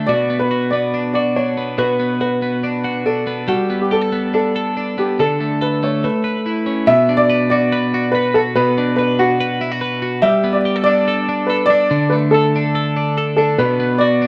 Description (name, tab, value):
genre	indie pop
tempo	142 BPM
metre	4/4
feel	straight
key	B minor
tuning	A4 = 440 Hz
part	dark upright piano	melody	0.0-14.3 s	F#4 to E5	-20 LUFS	equal	tape echo
part	twelve-string electric guitar	arpeggios	0.0-14.3 s	B2 to B4	-20 LUFS	equal	tape echo
room	moderate small room reverb, RT60 0.6 s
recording	rough home demo mix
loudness	-17 LUFS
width	mono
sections	0.0-6.9 A section; 6.9-14.3 B section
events	none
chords	0.1 Bm; 3.5 Gadd9; 5.2 D5; 6.0 Aadd9; 6.9 Bm; 10.2 Gadd9; 11.9 D5; 13.6 Bm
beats	| 0.09 0.51 0.94 1.36 | 1.79 2.21 2.64 3.06 | 3.49 3.91 4.33 4.76 | 5.18 5.61 6.03 6.45 | 6.88 7.30 7.72 8.14 | 8.56 8.98 9.40 9.82 | 10.24 10.66 11.08 11.50 | 11.92 12.34 12.76 13.18 | 13.60 14.01